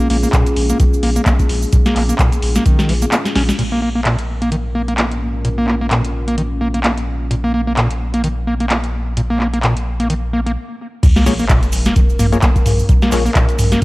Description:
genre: acid house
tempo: 129 BPM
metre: 4/4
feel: swing 57% on 16ths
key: Bb minor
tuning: A4 = 441 Hz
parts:
  - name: dark analog pad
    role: sustained chords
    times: 0.0-13.8 s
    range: Ab3 to Bb4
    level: -25 LUFS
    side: left 1 dB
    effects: chorus, phaser, sidechain pumping, cassette tape
  - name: overdriven acid bass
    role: riff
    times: 0.0-13.8 s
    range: Bb2 to Db4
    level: -19 LUFS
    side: equal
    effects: distortion, sidechain pumping, cassette tape, analog delay
  - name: cabasa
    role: percussion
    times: 0.0-3.6, 11.0-13.8 s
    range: none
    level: -33 LUFS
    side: right 10 dB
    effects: none
  - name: saturated sub bass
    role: bass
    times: 0.1-13.7 s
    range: Bb1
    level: -20 LUFS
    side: equal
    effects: sidechain pumping
  - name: booming analog drum machine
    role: drums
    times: 0.1-13.8 s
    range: crash cymbal, handclaps, hi-hat, snare drum, toms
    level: -20 LUFS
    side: equal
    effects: none
  - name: electronic kick drum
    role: drums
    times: 0.3-2.8, 11.0-13.8 s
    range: none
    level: -14 LUFS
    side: equal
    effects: none
  - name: sub drop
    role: sound effects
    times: 11.0-12.9 s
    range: none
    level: -21 LUFS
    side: equal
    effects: none
  - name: percussive organ stab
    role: stabs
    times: 11.3-13.2 s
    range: Bb3 to Db5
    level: -24 LUFS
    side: left 6 dB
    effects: chorus, cassette tape, analog delay
room: light reverb, digital ambience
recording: home recording on cassette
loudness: -13 LUFS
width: side -21 dB against mid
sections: 0.0-3.6 A section; 3.6-11.0 B section; 11.0-13.8 C section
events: kick drops out 3.1-3.6; drum fill 3.2-3.6; band accent 3.5; filter sweep on analog synth pad 3.6-11.0; stop 10.6-11.0; drop 11.0-13.8; impact 11.0-12.9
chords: 0.0 Bbm7

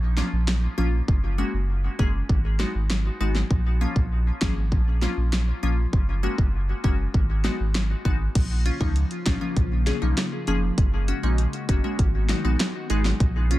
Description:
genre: dancehall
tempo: 99 BPM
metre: 4/4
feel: straight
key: Bb phrygian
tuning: A4 = 442 Hz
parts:
  - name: warm sub bass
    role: bass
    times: 0.0-13.6 s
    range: F1 to Db2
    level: -23 LUFS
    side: equal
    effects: none
  - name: glassy wavetable pluck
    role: accompaniment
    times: 0.2-13.6 s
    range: F3 to Ab4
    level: -30 LUFS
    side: left 2 dB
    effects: chorus, sidechain pumping, dub echo
  - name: pop drum kit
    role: drums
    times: 0.2-13.6 s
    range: crash cymbal, hi-hat, kick drum, snare drum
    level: -24 LUFS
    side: equal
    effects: vintage 12-bit sampler grit
  - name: hollow soft pad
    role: sustained chords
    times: 8.4-13.6 s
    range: Db3 to Gb4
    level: -32 LUFS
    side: equal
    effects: ensemble chorus, sidechain pumping
room: little or no reverb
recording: echo-heavy mix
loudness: -21 LUFS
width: side -16 dB against mid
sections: 0.0-8.4 A section; 8.4-13.6 B section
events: none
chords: 0.0 Bbm; 1.1 Gbadd9; 2.3 Abm7; 3.5 Bbm; 5.9 Gbadd9; 7.1 Abm7; 8.4 Bbm; 10.8 Gbadd9; 12.0 Abm7

